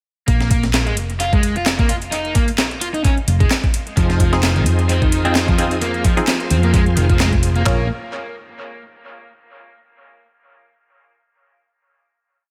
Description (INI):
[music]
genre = breakbeat, breaks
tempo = 130 BPM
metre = 4/4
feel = swing 55% on 16ths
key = unclear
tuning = A4 = 440 Hz
[part]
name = crunchy overdriven guitar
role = riff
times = 0.3-7.9 s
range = Eb3 to F4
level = -25 LUFS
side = equal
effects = tube saturation, dub echo
[part]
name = hollow-body short-scale picked electric bass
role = bass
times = 0.3-7.9 s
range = F1 to F2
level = -21 LUFS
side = equal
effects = none
[part]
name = breakbeat sampler-style drum kit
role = drums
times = 0.3-7.8 s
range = handclaps, hi-hat, kick drum, snare drum, toms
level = -21 LUFS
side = equal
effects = studio reverb, dub echo
[part]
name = house drum kit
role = drums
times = 0.3-7.6 s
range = handclaps, hi-hat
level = -29 LUFS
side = equal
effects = overdrive, studio reverb, dub echo
[part]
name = bright tonewheel organ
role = sustained chords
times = 4.0-7.9 s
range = Bb2 to Ab4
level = -26 LUFS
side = equal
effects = chorus vibrato, slow rotary speaker, sidechain pumping
[part]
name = band-passed chord stab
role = stabs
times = 4.3-7.8 s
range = C4 to Db5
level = -28 LUFS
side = equal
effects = phaser, dub echo
[sound]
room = light reverb, digital ambience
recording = echo-heavy mix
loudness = -17 LUFS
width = mono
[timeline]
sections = 0.3-7.7 drop; 7.7-9.5 final chord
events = drop 0.3-7.7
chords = 0.3 Bb5; 4.0 Fm7; 7.7 Bbm7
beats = | 0.28 0.74 1.20 1.66 | 2.12 2.58 3.05 3.51 | 3.97 4.43 4.89 5.35 | 5.82 6.28 6.74 7.20 | 7.66